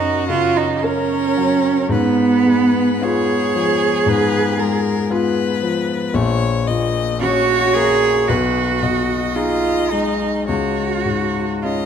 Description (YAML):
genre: classical, slow romantic movement for piano trio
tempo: 52-59 BPM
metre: 4/4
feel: rubato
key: F# major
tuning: A4 = 439 Hz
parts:
  - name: rich violin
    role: melody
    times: 0.0-11.9 s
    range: F#4 to D#5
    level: -24 LUFS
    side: left 8 dB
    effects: none
  - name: rich cello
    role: second line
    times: 0.0-11.9 s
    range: Cb4 to Ab4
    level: -18 LUFS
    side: right 5 dB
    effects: none
  - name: warm concert grand piano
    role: accompaniment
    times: 0.0-11.9 s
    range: A#1 to A#4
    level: -19 LUFS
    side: left 3 dB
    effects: none
room: moderate concert hall reverb, RT60 2.1 s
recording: none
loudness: -15 LUFS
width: side -8 dB against mid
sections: 0.0-11.9 A section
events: none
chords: 0.0 F#; 1.9 Fdim/Ab; 6.1 F#/A#; 8.3 G#m/B; 10.5 C#5